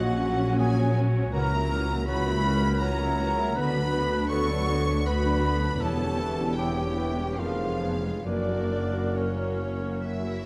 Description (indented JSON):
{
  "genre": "classical",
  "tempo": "66-82 BPM",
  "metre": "3/4",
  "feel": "rubato",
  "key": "unclear",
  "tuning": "A4 = 440 Hz",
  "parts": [
    { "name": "rich studio violin section", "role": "melody", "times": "0.0-10.5 s", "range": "C#5 to C#6", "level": "-38 LUFS", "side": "equal", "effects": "none" },
    { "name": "mellow clarinet", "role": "second line", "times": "0.0-10.5 s", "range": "F#4 to D#5", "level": "-38 LUFS", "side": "equal", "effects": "none" },
    { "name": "mellow hollow large flute ensemble", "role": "second line", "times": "0.0-10.5 s", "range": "C#5 to C#6", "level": "-38 LUFS", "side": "equal", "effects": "none" },
    { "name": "warm cor anglais", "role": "second line", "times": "0.0-10.5 s", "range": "C#4 to C#5", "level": "-38 LUFS", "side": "equal", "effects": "none" },
    { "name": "warm studio violin section", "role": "second line", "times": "0.0-10.5 s", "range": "A#3 to B4", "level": "-41 LUFS", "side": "equal", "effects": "none" },
    { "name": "warm studio viola section", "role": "accompaniment", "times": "0.0-10.5 s", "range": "D3 to D4", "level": "-36 LUFS", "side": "equal", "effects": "none" },
    { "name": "mellow French horn section", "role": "sustained chords", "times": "0.0-10.5 s", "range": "A#3 to Ab4", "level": "-37 LUFS", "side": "equal", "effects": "none" },
    { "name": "concert harp", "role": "arpeggios", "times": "0.0-10.5 s", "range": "E2 to F#5", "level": "-38 LUFS", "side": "equal", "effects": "none" },
    { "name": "dark tuba", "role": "bass", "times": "0.0-10.5 s", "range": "E1 to D2", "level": "-36 LUFS", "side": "equal", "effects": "none" },
    { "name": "warm studio cello section", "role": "bass", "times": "0.0-10.5 s", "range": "C#2 to A#2", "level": "-34 LUFS", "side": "equal", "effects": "none" },
    { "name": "warm studio double bass section", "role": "bass", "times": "0.0-10.5 s", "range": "E1 to D2", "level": "-34 LUFS", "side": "equal", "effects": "none" }
  ],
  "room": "wet scoring stage reverb, RT60 2.1 s",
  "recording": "dark, warm production",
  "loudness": "-26 LUFS",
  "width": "mono",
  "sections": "0.0-10.5 A section",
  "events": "none",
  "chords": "0.0 F#/A#; 1.3 F#7/C#; 3.6 Bm/D; 5.8 C#m7b5/E; 7.4 Fdim7; 8.2 F#"
}